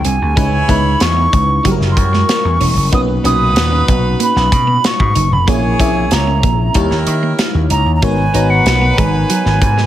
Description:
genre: polished 1980s jazz-funk pop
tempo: 94 BPM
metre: 4/4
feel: straight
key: G# minor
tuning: A4 = 440 Hz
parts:
  - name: hollow concert flute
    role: melody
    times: 0.0-9.9 s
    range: F#5 to D#6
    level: -17 LUFS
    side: right 1 dB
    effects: none
  - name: FM electric piano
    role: accompaniment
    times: 0.0-9.9 s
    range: A#2 to A#5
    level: -20 LUFS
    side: left 2 dB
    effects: lush chorus
  - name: clean electric guitar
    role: riff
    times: 0.0-9.9 s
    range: F#3 to D#4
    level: -24 LUFS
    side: right 5 dB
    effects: analog chorus
  - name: modern studio drum kit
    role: drums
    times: 0.0-9.9 s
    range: hi-hat, kick drum, snare drum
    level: -17 LUFS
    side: equal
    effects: none
  - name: vintage slap bass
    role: bass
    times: 0.1-9.9 s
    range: E1 to D#3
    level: -15 LUFS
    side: equal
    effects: none
  - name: warm horn section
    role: second line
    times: 0.4-9.9 s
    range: D#4 to C#5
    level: -23 LUFS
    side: right 2 dB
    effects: tape echo
room: light reverb, small room ambience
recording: none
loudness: -11 LUFS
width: side -12 dB against mid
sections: 0.0-9.9 A section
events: none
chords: 0.4 C#m9; 1.6 F#7b9; 2.9 Bmaj7; 5.5 A#m7b5; 6.8 D#7b9; 8.0 G#m11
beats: | 0.37 1.01 1.65 2.28 | 2.92 3.56 4.20 4.84 | 5.47 6.11 6.75 7.39 | 8.03 8.66 9.30

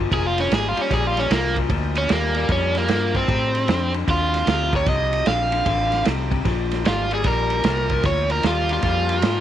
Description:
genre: electric blues shuffle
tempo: 151 BPM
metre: 4/4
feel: swing 65% on 8ths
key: Bb mixolydian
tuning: A4 = 440 Hz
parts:
  - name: electric guitar through a small old amp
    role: riff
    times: 0.0-9.4 s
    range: F2 to G3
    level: -26 LUFS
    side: left 13 dB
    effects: none
  - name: vintage muted fingered electric bass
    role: bass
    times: 0.0-9.4 s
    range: F1 to A2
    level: -24 LUFS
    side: equal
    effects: none
  - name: overdriven electric guitar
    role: melody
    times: 0.1-9.4 s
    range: Bb3 to F5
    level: -22 LUFS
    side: right 2 dB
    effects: none
  - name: vintage drum kit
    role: drums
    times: 0.1-9.4 s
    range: kick drum, ride cymbal, snare drum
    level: -24 LUFS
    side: right 3 dB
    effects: none
room: studio reverb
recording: 1960s-style stereo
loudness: -18 LUFS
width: side -11 dB against mid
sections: 0.0-9.4 A section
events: overdriven electric guitar solo 0.0-9.4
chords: 0.0 Bb5; 3.3 F7; 6.5 Bb7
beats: | 0.12 0.51 0.91 1.30 | 1.70 2.10 2.49 2.89 | 3.29 3.68 4.08 4.47 | 4.87 5.27 5.66 6.06 | 6.46 6.85 7.25 7.64 | 8.04 8.44 8.83 9.23

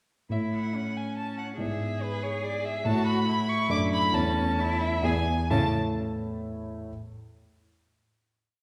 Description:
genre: quick classical-period movement for piano trio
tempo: 128-144 BPM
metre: 3/4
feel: rubato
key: A major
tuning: A4 = 441 Hz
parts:
  - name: rich violin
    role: melody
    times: 0.3-5.8 s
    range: B4 to D6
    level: -33 LUFS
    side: equal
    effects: none
  - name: rich cello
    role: second line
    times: 0.3-5.8 s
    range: C#3 to G#4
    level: -36 LUFS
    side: equal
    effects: none
  - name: dark concert grand piano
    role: accompaniment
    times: 0.3-6.9 s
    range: E2 to E5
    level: -30 LUFS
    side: equal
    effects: none
room: wet recital hall reverb, RT60 1.4 s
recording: recorded in a church or concert hall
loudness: -28 LUFS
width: mono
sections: 0.3-5.5 A section; 5.5-6.9 final chord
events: slowing down 2.2-5.5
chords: 0.3 A; 1.6 E7/G#; 2.9 A; 3.7 D/F#; 4.1 A/E; 5.0 E7; 5.5 A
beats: | 0.31 0.75 1.18 | 1.60 2.02 2.45 | 2.87 3.29 3.71 | 4.15 4.59 5.04 | 5.50 5.96 6.41

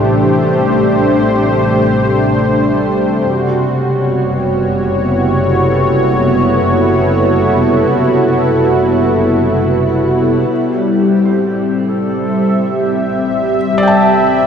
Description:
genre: ambient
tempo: 67 BPM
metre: 4/4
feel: straight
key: unclear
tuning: A4 = 439 Hz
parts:
  - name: warm analog pad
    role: sustained chords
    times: 0.0-14.5 s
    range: E3 to E5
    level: -12 LUFS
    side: equal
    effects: chorus, shimmer reverb
  - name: clear studio double bass section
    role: bass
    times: 0.0-14.5 s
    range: F#1 to A1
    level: -21 LUFS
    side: equal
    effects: none
  - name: analog drone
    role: drone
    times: 0.0-14.5 s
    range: C3 to G3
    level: -19 LUFS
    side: equal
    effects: chorus
  - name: felt-muted upright piano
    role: arpeggios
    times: 5.7-14.5 s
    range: A4 to A5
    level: -17 LUFS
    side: right 2 dB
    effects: shimmer reverb
  - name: wooden-headed alto flute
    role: melody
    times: 10.5-14.5 s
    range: E4 to A4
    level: -27 LUFS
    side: left 1 dB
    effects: shimmer reverb, diffuse ambient delay
room: wet lush hall reverb, RT60 3.0 s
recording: dreamy mix soaked in reverb, nothing above 11.0 kHz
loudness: -11 LUFS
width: side -7 dB against mid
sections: 0.0-10.5 A section; 10.5-14.5 B section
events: none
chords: 0.0 Am7; 3.3 F#m7; 10.5 Am7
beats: 0.57 1.47 2.37 | 3.26 4.16 5.06 5.95 | 6.85 7.75 8.66 9.58 | 10.51 11.42 12.33 13.23 | 14.12

